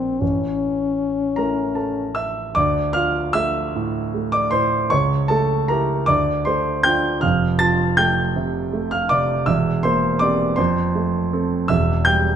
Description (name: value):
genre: classical, romantic duo for French horn and grand piano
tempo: 52 BPM (dotted quarters)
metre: 6/8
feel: uneven beats, rubato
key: D minor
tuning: A4 = 441 Hz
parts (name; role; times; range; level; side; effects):
- mellow French horn; melody; 0.0-2.2 s; C4 to C#4; -22 LUFS; left 5 dB; none
- warm concert grand piano; accompaniment; 0.0-12.4 s; E1 to A6; -18 LUFS; right 1 dB; none
room: moderate recital hall reverb, RT60 1.4 s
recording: close, detailed microphones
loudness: -17 LUFS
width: side -8 dB against mid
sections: 0.0-2.6 A section; 2.6-12.4 B section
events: none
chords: 0.2 A; 2.6 Dm; 4.9 A7/C#; 6.1 Dm; 7.2 F; 9.5 C7/E; 10.6 F; 11.7 A7(no3)/E (rootless)